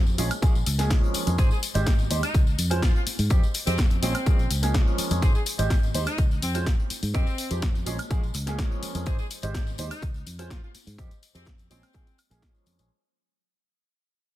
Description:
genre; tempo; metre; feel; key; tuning
filtered disco house; 125 BPM; 4/4; straight; unclear; A4 = 440 Hz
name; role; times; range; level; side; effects
fingered electric bass; bass; 0.0-12.9 s; Ab1 to Ab2; -28 LUFS; equal; tube saturation, sidechain pumping
punchy analog drum machine; drums; 0.1-12.9 s; hi-hat, snare drum, tambourine, woodblock; -32 LUFS; left 1 dB; overdrive, sidechain pumping on hats, sidechain pumping on perc, sidechain pumping on cymbals
tambourine; percussion; 0.1-12.9 s; none; -39 LUFS; left 10 dB; sidechain pumping on perc
dark baby grand piano; accompaniment; 0.2-12.9 s; F3 to C5; -32 LUFS; right 2 dB; phaser, sidechain pumping
electronic kick drum; drums; 0.4-12.5 s; none; -23 LUFS; equal; none
bright horn section; melody; 1.4-12.2 s; C4 to Ab4; -35 LUFS; left 1 dB; sidechain pumping, ping-pong delay
room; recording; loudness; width
digital ambience; dense, heavily limited modern master; -22 LUFS; side -15 dB against mid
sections
0.0-12.9 A section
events
drop 0.0-12.9; fade-out 5.2-12.9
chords
0.2 Bbm7; 1.4 Abmaj7; 2.3 Dbmaj7; 3.3 Fm9; 4.0 Bbm7; 5.2 Abmaj7; 6.2 Dbmaj7; 7.1 Fm9; 7.9 Bbm7; 9.1 Abmaj7; 10.0 Dbmaj7; 11.0 Fm9; 11.7 Bbm7

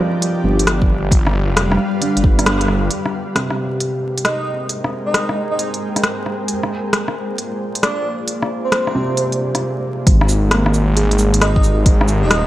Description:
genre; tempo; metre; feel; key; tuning
future garage; 134 BPM; 4/4; swing 67% on 16ths; unclear; A4 = 437 Hz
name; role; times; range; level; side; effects
felt-muted upright piano; accompaniment; 0.0-12.5 s; C3 to Bb3; -22 LUFS; right 1 dB; sidechain pumping, low-pass filter, tape echo
granular cloud pad; sustained chords; 0.0-12.5 s; G3 to G5; -24 LUFS; equal; built-in reverb, sidechain pumping
organic electronic drum kit; drums; 0.2-12.4 s; cabasa, hi-hat, rim click; -20 LUFS; left 1 dB; small room ambience
swelling detuned saw bass; bass; 0.4-2.9, 10.1-12.5 s; Eb1 to Ab1; -16 LUFS; equal; sidechain pumping
electronic kick drum; drums; 0.8-2.4, 10.1-12.0 s; none; -14 LUFS; equal; overdrive, small room ambience
airy dreamy lead; melody; 4.2-12.5 s; C5 to Eb5; -23 LUFS; right 2 dB; chorus, tape echo
room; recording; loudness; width
moderate lush hall reverb, RT60 2.0 s; vinyl crackle; -15 LUFS; side -14 dB against mid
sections
0.0-2.9 A section; 2.9-10.1 B section; 10.1-12.5 C section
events
kick drops out 2.5-2.9; band accent 2.5; filter sweep on ambient pad 2.9-10.1; filter sweep on felt piano 2.9-10.1; break 9.6-10.1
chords
0.0 G7; 2.9 Abmaj7; 6.5 Bb7; 10.1 Abmaj7

